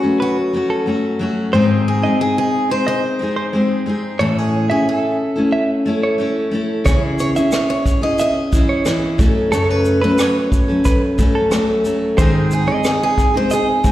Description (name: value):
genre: acoustic pop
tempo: 90 BPM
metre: 4/4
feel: straight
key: unclear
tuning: A4 = 440 Hz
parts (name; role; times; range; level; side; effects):
- picked acoustic archtop guitar; melody; 0.0-13.9 s; F#4 to D#5; -22 LUFS; equal; slapback echo
- picked steel-string acoustic guitar; accompaniment; 0.0-13.9 s; F#2 to A4; -17 LUFS; left 1 dB; slapback echo
- direct-recorded clean electric guitar; arpeggios; 0.2-13.7 s; A4 to E5; -23 LUFS; right 2 dB; slapback echo
- vintage brush drum kit; drums; 6.9-13.9 s; kick drum, rim click, shaker; -18 LUFS; equal; none
room: light reverb, small room ambience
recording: live gig heard through the venue's PA, recital hall reverb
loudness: -14 LUFS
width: side -14 dB against mid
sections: 0.0-13.9 A section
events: none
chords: 0.0 F#m; 1.5 G#; 4.2 A; 6.9 C#m; 9.2 F#m; 12.2 G#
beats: 0.21 0.88 | 1.54 2.21 2.87 3.54 | 4.20 4.87 5.53 6.20 | 6.86 7.53 8.19 8.86 | 9.52 10.19 10.85 11.52 | 12.18 12.85 13.51